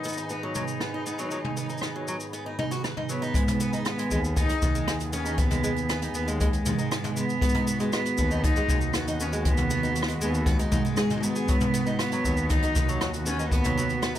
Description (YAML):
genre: folktronica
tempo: 118 BPM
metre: 4/4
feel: straight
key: G# minor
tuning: A4 = 440 Hz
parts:
  - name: rich cello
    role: melody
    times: 0.0-14.2 s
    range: G#3 to D#4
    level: -30 LUFS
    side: equal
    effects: digital delay
  - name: warm analog pad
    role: sustained chords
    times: 0.0-14.2 s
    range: G#2 to G#4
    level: -38 LUFS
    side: right 1 dB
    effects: chorus, tremolo
  - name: jazz brush drum kit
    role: drums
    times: 0.0-14.2 s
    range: cabasa, hi-hat, rim click, toms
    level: -31 LUFS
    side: right 3 dB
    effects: none
  - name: flickering grainy texture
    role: texture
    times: 0.0-3.4 s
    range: B4 to B5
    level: -44 LUFS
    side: equal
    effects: built-in reverb, plate reverb
  - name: picked steel-string acoustic guitar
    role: arpeggios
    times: 0.1-14.2 s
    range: F#3 to B4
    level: -33 LUFS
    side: equal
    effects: digital delay
  - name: dark cello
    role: bass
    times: 3.3-14.2 s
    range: D#2 to G#2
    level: -30 LUFS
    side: equal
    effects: none
  - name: kick drum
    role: drums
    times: 3.3-13.6 s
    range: none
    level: -26 LUFS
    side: left 1 dB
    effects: none
room: light reverb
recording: none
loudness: -24 LUFS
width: side -12 dB against mid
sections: 0.0-3.4 A section; 3.4-14.2 B section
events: none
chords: 0.0 B/G#; 3.4 G#m